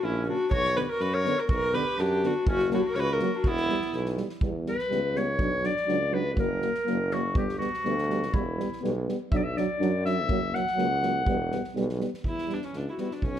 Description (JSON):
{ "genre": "balkan folk, Balkan brass band", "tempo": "123 BPM", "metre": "2/4", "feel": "straight", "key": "E dorian sharp4", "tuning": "A4 = 442 Hz", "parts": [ { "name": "dark viola", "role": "melody", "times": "0.0-3.9, 12.3-13.4 s", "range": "C#4 to C#5", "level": "-27 LUFS", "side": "left 1 dB", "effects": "none" }, { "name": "clear clarinet", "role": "second line", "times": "0.0-11.8 s", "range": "B3 to F#5", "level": "-30 LUFS", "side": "left 1 dB", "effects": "none" }, { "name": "clear tuba", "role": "bass", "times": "0.0-13.4 s", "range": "E1 to F#2", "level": "-32 LUFS", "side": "equal", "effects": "none" }, { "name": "dark euphonium", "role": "accompaniment", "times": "0.3-13.1 s", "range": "A#3 to D4", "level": "-34 LUFS", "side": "left 6 dB", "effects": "none" }, { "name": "mellow euphonium", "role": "accompaniment", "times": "0.3-13.1 s", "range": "C#3 to G3", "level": "-33 LUFS", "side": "right 8 dB", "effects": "none" }, { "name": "soft-mallet drum kit", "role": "percussion", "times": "0.5-13.4 s", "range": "kick drum, snare drum", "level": "-32 LUFS", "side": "equal", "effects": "none" } ], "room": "light reverb", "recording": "none", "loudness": "-25 LUFS", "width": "side -10 dB against mid", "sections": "0.0-4.4 A section; 4.4-12.3 B section; 12.3-13.4 C section", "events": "clarinet solo 4.4-12.3", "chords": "0.0 F#; 0.5 Bm; 2.5 F#; 3.4 Em; 5.4 Bm; 6.4 F#; 7.4 G; 8.3 Em; 9.3 Bm; 10.3 F#; 11.3 Em" }